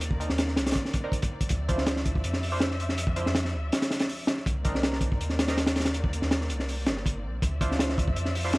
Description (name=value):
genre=drum and bass, jungle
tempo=162 BPM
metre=4/4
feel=straight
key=D phrygian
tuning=A4 = 439 Hz
part: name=dark studio string section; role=sustained chords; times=0.0-8.6 s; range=Eb3 to E5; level=-38 LUFS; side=left 1 dB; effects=none
part: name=soft dub sub bass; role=bass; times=0.0-8.6 s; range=G1 to F2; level=-30 LUFS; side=equal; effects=tube saturation
part: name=crunchy breakbeat drum kit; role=drums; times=0.0-8.6 s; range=hi-hat, kick drum, snare drum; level=-26 LUFS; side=equal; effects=none
part: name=band-passed chord stab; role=stabs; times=0.2-8.5 s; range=C4 to C5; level=-35 LUFS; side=right 2 dB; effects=chorus, phaser, dub echo
room=studio ambience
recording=dry, gritty hardware recording, vinyl crackle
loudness=-25 LUFS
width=side -22 dB against mid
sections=0.0-8.6 A section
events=none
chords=0.0 Cm9; 1.5 Dm9; 4.5 Cm9; 7.4 Dm9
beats=| 0.02 0.39 0.76 1.13 | 1.50 1.87 2.24 2.61 | 2.98 3.35 3.72 4.09 | 4.46 4.83 5.20 5.57 | 5.94 6.31 6.68 7.05 | 7.42 7.79 8.16 8.54